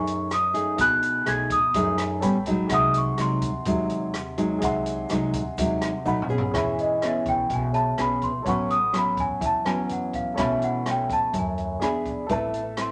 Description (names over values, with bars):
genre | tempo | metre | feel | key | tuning
bossa nova | 125 BPM | 4/4 | straight | E major | A4 = 440 Hz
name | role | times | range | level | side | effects
large celesta | melody | 0.0-12.9 s | D#5 to G#6 | -27 LUFS | equal | none
clear grand piano | accompaniment | 0.0-12.9 s | G#4 to C#6 | -35 LUFS | equal | none
nylon-string guitar | accompaniment | 0.0-12.9 s | F#2 to B4 | -29 LUFS | equal | none
upright bass | bass | 0.0-12.9 s | A1 to F#2 | -36 LUFS | equal | none
open jazz drum kit | drums | 0.1-12.9 s | hi-hat, kick drum, rim click, toms | -36 LUFS | equal | none
tube shaker | percussion | 0.1-6.5 s | none | -57 LUFS | equal | none
room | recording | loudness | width
moderate studio reverb, RT60 0.8 s | nothing above 10.6 kHz | -24 LUFS | mono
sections
0.0-6.5 A section; 6.5-12.9 B section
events
drum fill 6.1-6.5; celesta solo 6.5-12.9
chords
0.0 B13; 2.2 A9; 2.7 G#7/B#; 6.1 B7; 6.5 E6; 8.5 A69; 10.4 B9sus4; 11.8 E7; 12.3 Amadd9